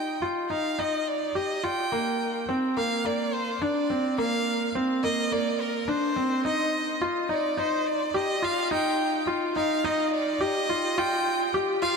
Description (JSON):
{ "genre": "electronica", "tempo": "106 BPM", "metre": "4/4", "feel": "straight", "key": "unclear", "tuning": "A4 = 439 Hz", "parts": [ { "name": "rich violin", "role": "melody", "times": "0.0-12.0 s", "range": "Bb4 to G5", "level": "-29 LUFS", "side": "right 2 dB", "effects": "none" }, { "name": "felt-muted upright piano", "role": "riff", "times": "0.0-12.0 s", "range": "Bb3 to G4", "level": "-26 LUFS", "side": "left 1 dB", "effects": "digital delay" } ], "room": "wet huge ambient reverb, RT60 4.2 s", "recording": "none", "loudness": "-24 LUFS", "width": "side -5 dB against mid", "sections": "0.0-12.0 A section", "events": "build-up 0.0-12.0", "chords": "0.0 Ebadd9; 1.9 Bb; 6.4 Ebsus2; 11.0 Fsus2" }